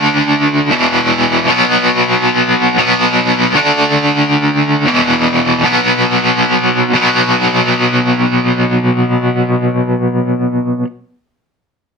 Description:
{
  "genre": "rock",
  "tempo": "free time",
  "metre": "none",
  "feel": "none",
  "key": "B minor",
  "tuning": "A4 = 437 Hz",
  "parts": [
    { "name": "cranked stack guitar", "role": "solo", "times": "0.0-10.9 s", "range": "E2 to D4", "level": "-10 LUFS", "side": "equal", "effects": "overdrive, tremolo" }
  ],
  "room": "moderate studio reverb, RT60 0.6 s",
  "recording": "none",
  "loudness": "-10 LUFS",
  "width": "side -5 dB against mid",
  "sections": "0.0-6.9 A section; 6.9-11.1 B section",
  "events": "none",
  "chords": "0.0 D5; 0.7 E5; 1.5 B5; 3.6 D5; 4.9 E5; 5.6 B5",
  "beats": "free time"
}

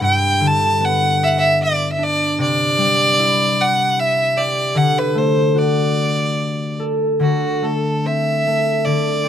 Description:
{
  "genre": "celtic folk, Celtic slow air",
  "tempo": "75 BPM",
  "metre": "3/4",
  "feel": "uneven beats, rubato",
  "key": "D mixolydian",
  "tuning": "A4 = 442 Hz",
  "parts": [
    { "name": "clear fiddle", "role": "melody", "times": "0.0-9.3 s", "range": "F#4 to A5", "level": "-17 LUFS", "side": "right 1 dB", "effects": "none" },
    { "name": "concert harp", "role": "accompaniment", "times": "0.0-9.3 s", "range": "G2 to A4", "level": "-18 LUFS", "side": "left 1 dB", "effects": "none" }
  ],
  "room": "little or no reverb",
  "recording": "recorded outdoors, with no room sound",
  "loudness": "-15 LUFS",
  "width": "side -10 dB against mid",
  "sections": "0.0-7.2 A section; 7.2-9.3 B section",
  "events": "none",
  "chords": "0.0 G; 2.4 Cadd9; 4.7 D; 7.2 D5",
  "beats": "| 0.02 0.81 1.60 | 2.39 3.18 3.96 | 4.74 5.53 6.37 | 7.21 8.04 8.85"
}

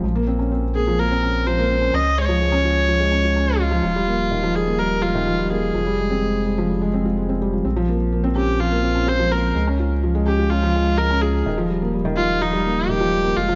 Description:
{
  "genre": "piano and strings electronica",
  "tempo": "126 BPM",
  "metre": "4/4",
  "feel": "straight",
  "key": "unclear",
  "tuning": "A4 = 440 Hz",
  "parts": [
    { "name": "felt-muted upright piano", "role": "riff", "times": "0.0-13.6 s", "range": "Eb3 to F4", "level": "-24 LUFS", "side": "equal", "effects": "none" },
    { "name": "warm sub bass", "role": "bass", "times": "0.0-13.6 s", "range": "Eb1 to Db2", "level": "-26 LUFS", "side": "equal", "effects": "none" },
    { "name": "rich viola", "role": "melody", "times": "0.8-13.6 s", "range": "Eb4 to Eb5", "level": "-24 LUFS", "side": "equal", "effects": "none" }
  ],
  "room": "light reverb",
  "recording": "nothing above 7.5 kHz",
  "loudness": "-20 LUFS",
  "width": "mono",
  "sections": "0.0-13.6 A section",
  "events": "none",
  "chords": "0.0 Bbmadd9; 1.9 Db; 3.8 Ebadd9; 5.7 Fmadd9; 7.7 Bbmadd9; 9.6 Db; 11.5 Ebadd9",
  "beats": "| 0.03 0.51 0.98 1.46 | 1.94 2.41 2.89 3.36 | 3.84 4.32 4.79 5.27 | 5.75 6.22 6.70 7.17 | 7.65 8.13 8.60 9.08 | 9.55 10.03 10.51 10.98 | 11.46 11.94 12.41 12.89 | 13.36"
}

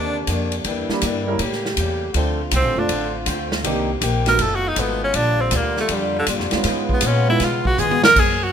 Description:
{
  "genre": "jazz, big band swing",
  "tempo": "160 BPM",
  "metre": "4/4",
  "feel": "swing 66% on 8ths",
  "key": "unclear",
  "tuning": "A4 = 440 Hz",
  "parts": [
    { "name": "edgy tenor saxophone", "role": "melody", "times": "0.0-0.2, 2.6-8.5 s", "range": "D3 to Bb4", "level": "-19 LUFS", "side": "right 1 dB", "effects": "none" },
    { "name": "picked acoustic archtop guitar", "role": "accompaniment", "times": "0.0-8.4 s", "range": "F#2 to G4", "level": "-27 LUFS", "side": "left 5 dB", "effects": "none" },
    { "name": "bright trombone section", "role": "sustained chords", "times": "0.0-8.5 s", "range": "C3 to Cb5", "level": "-29 LUFS", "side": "right 1 dB", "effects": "none" },
    { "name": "upright bass", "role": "bass", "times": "0.0-8.5 s", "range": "F1 to Cb3", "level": "-24 LUFS", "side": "equal", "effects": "none" },
    { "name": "swinging big-band drum kit", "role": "drums", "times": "0.3-8.3 s", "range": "crash cymbal, hi-hat, kick drum, ride cymbal, snare drum, toms", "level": "-24 LUFS", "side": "equal", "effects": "none" },
    { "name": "warm concert grand piano", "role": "accompaniment", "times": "0.9-7.4 s", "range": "Eb3 to Bb4", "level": "-26 LUFS", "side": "right 4 dB", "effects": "none" }
  ],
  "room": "light reverb",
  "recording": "minimal, uncompressed stereo recording",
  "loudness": "-17 LUFS",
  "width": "side -8 dB against mid",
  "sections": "0.0-8.2 A section",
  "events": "tenor saxophone solo 0.0-8.5; drum fill 7.8-8.2",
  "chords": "0.0 Cm9; 0.6 Em7b5; 1.4 A7b9; 2.1 Dm7; 3.6 Cm7; 4.4 B7#11; 5.1 Bb6; 6.7 Db7",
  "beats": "0.27 | 0.65 1.02 1.40 1.77 | 2.15 2.52 2.90 3.27 | 3.65 4.02 4.40 4.77 | 5.15 5.52 5.90 6.28 | 6.65 7.03 7.41 7.78 | 8.16"
}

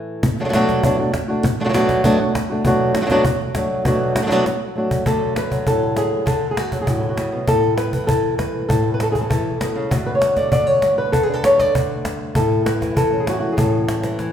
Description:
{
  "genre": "flamenco",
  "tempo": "198 BPM",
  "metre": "4/4",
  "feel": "straight",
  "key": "unclear",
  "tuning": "A4 = 441 Hz",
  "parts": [
    { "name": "flamenco guitar", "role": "melody", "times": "0.0-14.3 s", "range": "A2 to D5", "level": "-17 LUFS", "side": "equal", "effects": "none" },
    { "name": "cajon", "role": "percussion", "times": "0.2-14.3 s", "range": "none", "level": "-23 LUFS", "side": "equal", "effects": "none" }
  ],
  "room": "wet large studio reverb, RT60 1.4 s",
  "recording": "band playing live in one room",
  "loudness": "-16 LUFS",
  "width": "side -9 dB against mid",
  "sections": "0.2-5.1 A section; 5.1-14.3 B section",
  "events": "drum fill 4.3-5.1, 14.0",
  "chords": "0.2 Bm7; 5.1 D; 7.5 A5; 9.9 D; 12.4 A",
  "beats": "| 0.23 0.53 0.84 1.14 | 1.44 1.74 2.04 2.34 | 2.65 2.95 3.25 3.55 | 3.85 4.15 4.46 4.76 | 5.06 5.36 5.66 5.97 | 6.27 6.57 6.87 7.18 | 7.48 7.78 8.09 8.39 | 8.70 9.00 9.30 9.61 | 9.91 10.22 10.52 10.83 | 11.13 11.44 11.74 12.05 | 12.35 12.66 12.96 13.27 | 13.57 13.88 14.18"
}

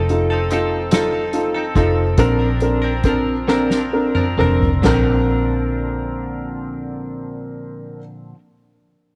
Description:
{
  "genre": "six-eight pop ballad",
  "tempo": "43-49 BPM (dotted quarters)",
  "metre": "6/8",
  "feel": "straight",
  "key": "Bb major",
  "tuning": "A4 = 441 Hz",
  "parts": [
    { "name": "direct-recorded clean electric guitar", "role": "arpeggios", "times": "0.0-8.4 s", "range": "Bb2 to Bb4", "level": "-28 LUFS", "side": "equal", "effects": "analog chorus" },
    { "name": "vintage muted fingered electric bass", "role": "bass", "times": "0.0-8.0 s", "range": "F1 to Bb1", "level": "-23 LUFS", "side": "equal", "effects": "none" },
    { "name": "dark upright piano", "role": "accompaniment", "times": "0.1-8.0 s", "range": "C4 to Bb4", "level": "-22 LUFS", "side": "equal", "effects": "none" },
    { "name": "soft-mallet drum kit", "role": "drums", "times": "0.1-5.1 s", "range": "china cymbal, hi-hat, kick drum, snare drum, toms", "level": "-24 LUFS", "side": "equal", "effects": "none" }
  ],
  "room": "light reverb, studio reverb",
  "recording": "none",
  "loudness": "-18 LUFS",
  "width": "mono",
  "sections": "0.0-4.8 A section; 4.8-7.6 B section",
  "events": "slowing down 0.0-4.8; drum fill 3.5-4.8",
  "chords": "0.0 F7; 2.2 Bbadd9",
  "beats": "0.92 | 2.18 3.48 | 4.84 6.24"
}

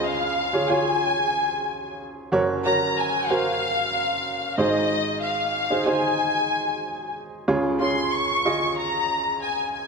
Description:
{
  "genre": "pop",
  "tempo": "93 BPM",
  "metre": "4/4",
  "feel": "straight",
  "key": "Db major",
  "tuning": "A4 = 440 Hz",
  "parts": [
    { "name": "dark studio violin section", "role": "melody", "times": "0.0-9.9 s", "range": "Eb5 to Db6", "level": "-23 LUFS", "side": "left 2 dB", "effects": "none" },
    { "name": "clear upright piano", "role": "accompaniment", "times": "0.0-9.9 s", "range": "Gb1 to Eb5", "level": "-25 LUFS", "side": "right 2 dB", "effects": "none" }
  ],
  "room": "wet scoring stage reverb, RT60 1.6 s",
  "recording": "none",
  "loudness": "-21 LUFS",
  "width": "side -4 dB against mid",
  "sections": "0.0-9.9 A section",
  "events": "none",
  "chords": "0.0 Db; 2.3 Gb; 4.6 Ab; 7.5 Db",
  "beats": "0.38 1.03 1.67 | 2.32 2.96 3.61 4.25 | 4.90 5.54 6.19 6.83 | 7.48 8.12 8.77 9.41"
}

